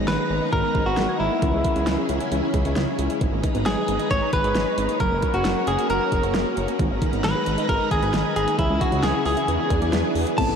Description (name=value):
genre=synth-pop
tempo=134 BPM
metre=4/4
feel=straight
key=G# minor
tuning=A4 = 441 Hz
part: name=string machine, violins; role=sustained chords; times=0.0-10.6 s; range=C3 to A#5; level=-27 LUFS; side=left 1 dB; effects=ensemble chorus
part: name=warbly dusty pluck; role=arpeggios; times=0.0-10.6 s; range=C3 to A#6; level=-30 LUFS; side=right 4 dB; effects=chorus, tape echo
part: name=fat analog bass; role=bass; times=0.0-10.6 s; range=F#1 to E2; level=-26 LUFS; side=equal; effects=none
part: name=direct-recorded clean electric guitar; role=melody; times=0.1-10.6 s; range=E4 to A5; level=-24 LUFS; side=equal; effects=tape echo
part: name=pop drum kit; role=drums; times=0.1-10.5 s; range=crash cymbal, hi-hat, kick drum, snare drum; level=-26 LUFS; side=equal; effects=overdrive
part: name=mellow FM electric piano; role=accompaniment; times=10.4-10.6 s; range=B3 to A4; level=-25 LUFS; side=left 6 dB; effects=chorus, phaser
room=wet huge ambient reverb, RT60 8.0 s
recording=dreamy mix soaked in reverb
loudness=-20 LUFS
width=side -7 dB against mid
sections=0.0-10.4 A section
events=none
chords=0.0 G#madd9; 1.4 C#m; 3.2 G#madd9; 5.0 F#; 6.8 G#madd9; 8.6 C#m; 9.5 E7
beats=0.08 0.53 0.97 | 1.42 1.87 2.32 2.77 | 3.21 3.66 4.11 4.56 | 5.00 5.45 5.90 6.35 | 6.79 7.24 7.69 8.14 | 8.59 9.03 9.48 9.93 | 10.38